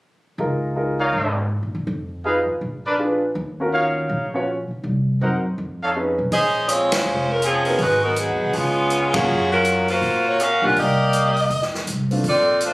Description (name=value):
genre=jazz, big band swing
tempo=162 BPM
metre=4/4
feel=swing 64% on 8ths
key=Bb minor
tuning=A4 = 440 Hz
part: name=clear concert grand piano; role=accompaniment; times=0.4-12.2 s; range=A3 to Db5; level=-23 LUFS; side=equal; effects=none
part: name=upright bass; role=bass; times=0.4-12.7 s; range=F1 to Db3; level=-26 LUFS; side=equal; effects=none
part: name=warm trumpet section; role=stabs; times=1.0-5.9 s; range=D4 to Gb5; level=-22 LUFS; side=equal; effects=none
part: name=bright saxophone section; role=melody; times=6.3-12.7 s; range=F3 to Gb5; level=-17 LUFS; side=equal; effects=none
part: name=swinging big-band drum kit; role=drums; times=6.3-12.7 s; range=hi-hat, kick drum, ride cymbal, snare drum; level=-28 LUFS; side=equal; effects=none
room=light reverb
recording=recorded on a phone in the room, club reverb, compression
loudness=-18 LUFS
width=side -21 dB against mid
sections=0.4-6.3 A section; 6.3-12.7 B section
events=band accent 6.9, 9.1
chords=0.4 Db69; 1.9 Fm7b5; 2.6 Bb7b9; 3.4 Ebm9; 4.8 Cm7b5; 5.6 Fm7b13; 6.3 Bbm11; 7.8 Abm7; 8.5 Db7; 9.3 Gbmaj7; 10.8 Cm9; 11.5 F